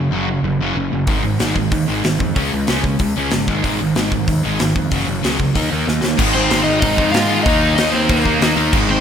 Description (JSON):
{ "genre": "punk rock", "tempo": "188 BPM", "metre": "4/4", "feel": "straight", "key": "unclear", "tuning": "A4 = 439 Hz", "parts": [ { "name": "distorted electric guitar", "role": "riff", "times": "0.0-9.0 s", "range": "Gb2 to Eb4", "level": "-21 LUFS", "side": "right 7 dB", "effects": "distortion" }, { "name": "sludgy distorted guitar", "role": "riff", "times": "0.0-9.0 s", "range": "Gb2 to Eb4", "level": "-22 LUFS", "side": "left 10 dB", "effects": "overdrive" }, { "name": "fuzz picked electric bass", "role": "bass", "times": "0.0-9.0 s", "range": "Gb1 to Ab2", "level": "-23 LUFS", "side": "equal", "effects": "overdrive" }, { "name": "big rock drum kit", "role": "drums", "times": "1.1-8.8 s", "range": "crash cymbal, hi-hat, kick drum, snare drum", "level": "-20 LUFS", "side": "equal", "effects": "none" }, { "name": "high-gain distorted guitar", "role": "riff", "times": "6.2-9.0 s", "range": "Ab2 to Eb4", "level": "-21 LUFS", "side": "equal", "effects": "distortion, slapback echo" }, { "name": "crunchy overdriven guitar", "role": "melody", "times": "6.3-9.0 s", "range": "Bb3 to F5", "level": "-18 LUFS", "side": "left 1 dB", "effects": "tape echo" } ], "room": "moderate recital hall reverb, RT60 1.4 s", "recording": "big arena sound", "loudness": "-14 LUFS", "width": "side -8 dB against mid", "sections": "0.0-6.2 A section; 6.2-9.0 B section", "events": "drum fill 5.9-6.2", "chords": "0.0 Gb5; 1.1 Ab5; 2.4 Db5; 3.5 Ab5; 4.9 Gb5; 5.6 Eb5; 6.2 Ab; 7.5 Eb5", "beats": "0.12 0.44 0.76 | 1.08 1.40 1.72 2.04 | 2.36 2.68 3.00 3.32 | 3.64 3.96 4.28 4.59 | 4.91 5.23 5.55 5.87 | 6.19 6.51 6.82 7.14 | 7.46 7.78 8.10 8.41 | 8.73" }